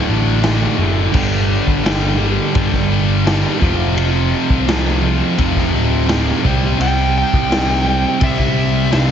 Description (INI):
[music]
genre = quiet-loud alternative rock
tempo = 85 BPM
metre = 4/4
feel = straight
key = unclear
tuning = A4 = 439 Hz
[part]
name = distorted electric guitar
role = riff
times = 0.0-9.1 s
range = D2 to C4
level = -24 LUFS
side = left 2 dB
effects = overdrive
[part]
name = heavy high-gain guitar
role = riff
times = 0.0-9.1 s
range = D2 to C4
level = -21 LUFS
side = left 12 dB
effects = distortion
[part]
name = thick fuzz guitar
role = riff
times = 0.0-9.1 s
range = D2 to C4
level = -21 LUFS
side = right 12 dB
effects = distortion
[part]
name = overdriven picked electric bass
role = bass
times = 0.0-9.1 s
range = D1 to G2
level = -18 LUFS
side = equal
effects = none
[part]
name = raw garage drum kit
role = drums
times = 0.4-9.1 s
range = crash cymbal, kick drum, ride cymbal, snare drum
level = -20 LUFS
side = equal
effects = none
[part]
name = smooth overdriven lead guitar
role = melody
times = 6.8-9.1 s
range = E5 to G5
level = -19 LUFS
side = right 1 dB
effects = plate reverb, digital delay
[sound]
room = light reverb, small room ambience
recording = heavily compressed radio sound, multiband compression, nothing above 7.6 kHz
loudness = -13 LUFS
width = side -8 dB against mid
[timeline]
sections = 0.0-9.1 A section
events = none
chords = 0.0 D5; 1.1 G5; 3.6 F5; 6.4 C